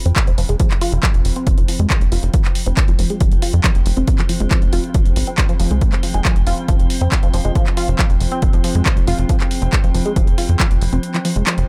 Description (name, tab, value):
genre	driving peak-time techno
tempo	138 BPM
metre	4/4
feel	straight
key	F minor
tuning	A4 = 440 Hz
part	metallic inharmonic drone	drone	0.0-11.7 s	F3 to C4	-30 LUFS	equal	chorus, built-in reverb, sidechain pumping
part	tight sequenced synth	riff	0.1-11.6 s	F3 to F4	-27 LUFS	equal	chorus, phaser, sidechain pumping, delay
part	tight sequencer bass	bass	0.1-11.6 s	F1 to F2	-20 LUFS	equal	sidechain pumping
part	punchy analog drum machine	drums	0.1-11.7 s	handclaps, hi-hat	-26 LUFS	equal	none
part	electronic kick drum	drums	0.2-10.7 s	none	-19 LUFS	equal	none
room	little or no reverb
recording	none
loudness	-16 LUFS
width	mono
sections	0.0-11.7 A section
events	break 11.0-11.7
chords	0.0 F5